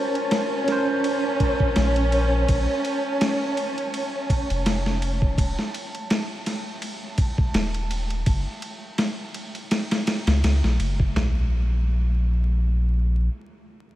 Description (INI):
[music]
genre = trip hop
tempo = 83 BPM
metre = 4/4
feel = swing 55% on 16ths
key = Bb harmonic minor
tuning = A4 = 443 Hz
[part]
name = tine electric piano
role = accompaniment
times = 0.0-2.5 s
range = Db4 to C5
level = -28 LUFS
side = equal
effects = fast stereo tremolo, harmonic tremolo, tape echo
[part]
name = muted symphonic violin section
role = sustained chords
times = 0.0-5.4 s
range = Db4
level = -27 LUFS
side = right 1 dB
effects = none
[part]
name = wind-like tuned noise texture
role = texture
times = 0.0-8.3 s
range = A5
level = -37 LUFS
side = right 2 dB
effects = built-in reverb, lush chorus
[part]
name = dusty soul sampler-style drum kit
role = drums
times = 0.2-11.3 s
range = kick drum, ride cymbal, snare drum, toms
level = -25 LUFS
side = equal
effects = none
[part]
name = soft dub sub bass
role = bass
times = 1.8-13.3 s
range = Eb1 to Db2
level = -22 LUFS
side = equal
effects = none
[sound]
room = moderate huge ambient reverb, RT60 8.2 s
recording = dreamy mix soaked in reverb, vinyl crackle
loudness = -21 LUFS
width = side -14 dB against mid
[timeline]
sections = 0.0-11.2 A section; 11.2-14.0 B section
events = none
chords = 0.0 Bbmadd9; 5.4 N.C.; 8.3 Gb5; 11.2 N.C.